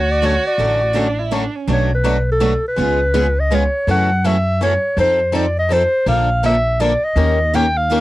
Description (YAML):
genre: acoustic string swing (jazz manouche)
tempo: 164 BPM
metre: 3/4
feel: swing 62% on 8ths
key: unclear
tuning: A4 = 443 Hz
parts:
  - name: breathy clarinet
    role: melody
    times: 0.0-8.0 s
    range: A4 to G5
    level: -17 LUFS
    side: equal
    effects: none
  - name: warm violin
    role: second line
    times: 0.0-1.7 s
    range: C#4 to F#4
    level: -24 LUFS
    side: right 5 dB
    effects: none
  - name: upright bass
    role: bass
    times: 0.0-8.0 s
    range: A1 to F#2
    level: -19 LUFS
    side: equal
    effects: none
  - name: picked steel-string acoustic guitar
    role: accompaniment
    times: 0.2-8.0 s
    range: B2 to B4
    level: -24 LUFS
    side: right 7 dB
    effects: none
  - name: picked swing-style acoustic guitar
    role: accompaniment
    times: 0.2-8.0 s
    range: B2 to Bb4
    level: -22 LUFS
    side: left 5 dB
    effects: none
room: little or no reverb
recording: dry, close 1970s-style studio recording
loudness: -14 LUFS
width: side -16 dB against mid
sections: 0.0-1.7 A section; 1.7-8.0 B section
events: none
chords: 0.0 Dmaj7; 1.7 Bm7; 2.8 C#7; 3.9 F#m7; 5.0 F7; 6.1 Bbmaj7; 7.2 Eb9